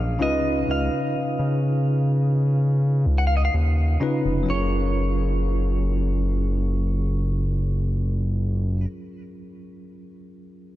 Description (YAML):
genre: contemporary R&B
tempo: 63 BPM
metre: 4/4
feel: straight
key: F# major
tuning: A4 = 439 Hz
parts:
  - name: clean electric guitar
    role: melody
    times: 0.0-8.9 s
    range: C#5 to F#5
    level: -30 LUFS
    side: equal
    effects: wide subtle chorus, diffuse ambient delay
  - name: bell-like tine electric piano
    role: accompaniment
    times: 0.0-10.8 s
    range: C#3 to B4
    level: -28 LUFS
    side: left 1 dB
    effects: medium stereo tremolo
  - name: smooth synth bass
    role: bass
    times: 0.0-8.9 s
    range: E#1 to C#3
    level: -21 LUFS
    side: equal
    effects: none
room: light reverb, digital ambience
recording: none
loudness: -20 LUFS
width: side -14 dB against mid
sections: 0.0-4.5 A section; 4.5-8.3 B section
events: none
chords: 0.2 C#9; 4.5 F#maj7